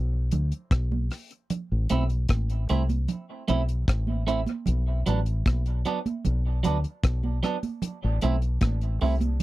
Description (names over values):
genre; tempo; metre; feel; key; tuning
dub reggae; 76 BPM; 4/4; straight; A dorian; A4 = 440 Hz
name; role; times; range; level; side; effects
deep dub fingered electric bass; bass; 0.0-9.4 s; A1 to D2; -25 LUFS; equal; none
damped 70s drum kit; drums; 0.3-9.4 s; hi-hat, kick drum, rim click; -26 LUFS; equal; none
congas; percussion; 0.3-9.4 s; none; -32 LUFS; right 5 dB; none
clean electric guitar; accompaniment; 1.9-9.1 s; F#3 to E4; -29 LUFS; right 5 dB; dub echo
room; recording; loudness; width
little or no reverb; dry, close 1970s-style studio recording; -24 LUFS; side -17 dB against mid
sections
0.0-1.5 A section; 1.5-9.4 B section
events
break 0.0-1.5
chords
0.0 Bm; 1.5 Am; 4.7 Bm; 7.8 Am